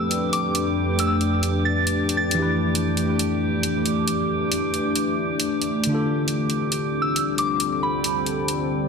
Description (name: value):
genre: future garage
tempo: 136 BPM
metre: 4/4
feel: swing 66% on 16ths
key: E phrygian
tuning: A4 = 440 Hz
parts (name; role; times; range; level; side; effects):
- soft synth bell; melody; 0.0-2.4, 7.0-8.4 s; B5 to A6; -26 LUFS; left 1 dB; chorus, ping-pong delay
- barky tine electric piano; accompaniment; 0.0-8.9 s; D3 to B4; -29 LUFS; right 2 dB; dub echo
- deep dark ambient pad; sustained chords; 0.0-8.9 s; F2 to B4; -23 LUFS; left 2 dB; chorus, built-in reverb
- drifting glass-harmonics texture; texture; 0.0-8.9 s; G4; -29 LUFS; right 2 dB; chorus, built-in reverb
- electronic hi-hat; drums; 0.1-8.5 s; none; -25 LUFS; equal; overdrive, studio reverb
room: wet digital room reverb, RT60 1.3 s, digital ambience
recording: dense, heavily limited modern master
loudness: -20 LUFS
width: side -5 dB against mid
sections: 0.0-8.9 A section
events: none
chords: 0.0 Fadd9; 2.4 Em; 5.9 Dm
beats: 0.18 | 0.62 1.06 1.50 1.94 | 2.38 2.83 3.27 3.71 | 4.15 4.59 5.03 5.47 | 5.91 6.36 6.80 7.24 | 7.68 8.12 8.56